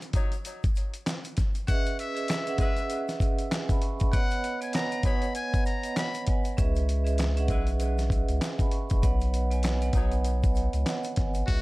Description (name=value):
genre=hip hop, boom-bap hip-hop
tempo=98 BPM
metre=4/4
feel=swing 58% on 16ths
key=unclear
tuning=A4 = 440 Hz
part: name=dusty soul sampler-style drum kit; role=drums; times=0.0-11.6 s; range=handclaps, hi-hat, kick drum, snare drum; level=-27 LUFS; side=equal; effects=none
part: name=tube shaker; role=percussion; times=0.0-11.5 s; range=none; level=-51 LUFS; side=left 13 dB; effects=none
part: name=mellow saxophone section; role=stabs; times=0.2-10.1 s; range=F#3 to C#5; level=-42 LUFS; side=left 3 dB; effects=analog delay
part: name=trumpet with metal mute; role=melody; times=1.7-6.3, 11.5-11.6 s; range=F#4 to B5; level=-34 LUFS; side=left 3 dB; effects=analog delay
part: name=vibraphone with hard mallets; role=accompaniment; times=1.7-11.6 s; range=B3 to C#6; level=-32 LUFS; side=right 3 dB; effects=none
part: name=round analog bass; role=bass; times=6.6-11.6 s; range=F#1 to C#2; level=-27 LUFS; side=equal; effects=none
room=studio reverb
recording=dark, warm production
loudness=-25 LUFS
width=side -20 dB against mid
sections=0.0-11.5 A section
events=break 0.0-1.7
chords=0.0 F#5; 1.7 C#m7; 4.1 Badd9; 6.6 C#m7; 9.0 Badd9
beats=0.46 1.07 | 1.68 2.29 2.91 3.52 | 4.13 4.74 5.36 5.97 | 6.58 7.19 7.80 8.42 | 9.03 9.64 10.25 10.87 | 11.48